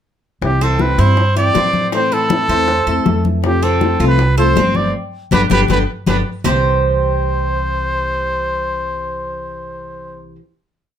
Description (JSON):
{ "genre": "latin, Cuban son and guajira", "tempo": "159 BPM", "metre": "4/4", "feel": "straight", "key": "C major", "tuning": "A4 = 441 Hz", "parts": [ { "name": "breathy trumpet", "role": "melody", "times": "0.4-10.2 s", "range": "G4 to D5", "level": "-19 LUFS", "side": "equal", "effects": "slapback echo" }, { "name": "nylon-string guitar", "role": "accompaniment", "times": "0.4-10.4 s", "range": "C3 to F4", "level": "-22 LUFS", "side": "left 3 dB", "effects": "none" }, { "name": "upright bass", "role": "bass", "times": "0.4-10.4 s", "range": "G1 to A2", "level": "-18 LUFS", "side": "right 1 dB", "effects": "none" }, { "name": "bongos", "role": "percussion", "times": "0.4-6.5 s", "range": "none", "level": "-23 LUFS", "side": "left 6 dB", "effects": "none" }, { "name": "congas", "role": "percussion", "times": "0.4-6.5 s", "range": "none", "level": "-21 LUFS", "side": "left 4 dB", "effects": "none" }, { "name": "Cuban tres", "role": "arpeggios", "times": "0.6-10.4 s", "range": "B3 to C5", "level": "-22 LUFS", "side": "right 4 dB", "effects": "none" } ], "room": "light reverb", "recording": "close, detailed microphones", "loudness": "-13 LUFS", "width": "side -9 dB against mid", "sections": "0.4-6.4 A section; 6.4-9.5 final chord", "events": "band accent 4.9-6.4", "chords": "0.4 C; 1.9 Am; 3.4 F; 4.9 G; 6.4 C" }